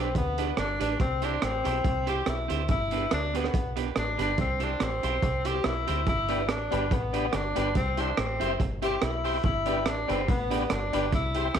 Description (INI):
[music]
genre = ska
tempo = 142 BPM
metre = 4/4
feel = swing 54% on 8ths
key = G major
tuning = A4 = 440 Hz
[part]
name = warm tenor saxophone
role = melody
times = 0.0-11.6 s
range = B3 to G4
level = -30 LUFS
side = left 2 dB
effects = slapback echo
[part]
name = clean electric guitar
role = accompaniment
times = 0.0-11.6 s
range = B3 to D5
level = -34 LUFS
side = right 11 dB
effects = slapback echo
[part]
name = deep dub fingered electric bass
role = bass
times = 0.0-11.6 s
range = F#1 to D2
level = -32 LUFS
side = left 1 dB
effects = none
[part]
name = crunchy breakbeat drum kit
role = drums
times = 0.2-11.6 s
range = hi-hat, kick drum, rim click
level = -31 LUFS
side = right 3 dB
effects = slapback echo
[part]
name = tonewheel organ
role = stabs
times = 6.3-11.5 s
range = D4 to C5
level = -33 LUFS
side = left 10 dB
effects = fast rotary speaker, slapback echo
[sound]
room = light reverb, small room reverb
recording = 1960s-style stereo with parts hard left and right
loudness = -25 LUFS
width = side -8 dB against mid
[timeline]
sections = 0.0-11.6 A section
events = none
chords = 0.0 G; 1.0 C; 2.7 G; 4.4 C; 6.1 G; 7.8 C; 9.4 G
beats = 0.15 0.58 | 1.00 1.42 1.85 2.27 | 2.69 3.12 3.54 3.96 | 4.38 4.80 5.23 5.65 | 6.07 6.49 6.91 7.33 | 7.76 8.18 8.60 9.02 | 9.44 9.86 10.28 10.70 | 11.12 11.54